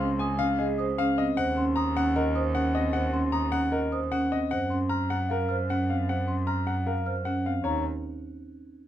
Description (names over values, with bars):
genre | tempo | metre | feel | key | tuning
classical, minimalist pattern music | 153 BPM | 4/4 | straight | Eb dorian | A4 = 440 Hz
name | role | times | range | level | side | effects
clear baby grand piano | melody | 0.0-7.8 s | Ab4 to Bb5 | -30 LUFS | left 5 dB | none
large celesta | arpeggios | 0.0-7.8 s | Eb5 to F6 | -34 LUFS | left 2 dB | none
marimba with soft mallets | arpeggios | 0.0-7.8 s | C4 to C5 | -28 LUFS | right 2 dB | none
rich cello | bass | 0.0-7.8 s | Db2 to Gb2 | -31 LUFS | right 2 dB | none
room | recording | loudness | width
little or no reverb | close, detailed microphones | -24 LUFS | side -11 dB against mid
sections
0.0-7.7 A section; 7.7-8.9 B section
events
none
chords
0.0 Dbmaj7; 1.4 Ebm7; 4.5 Gbmaj7; 7.7 Eb5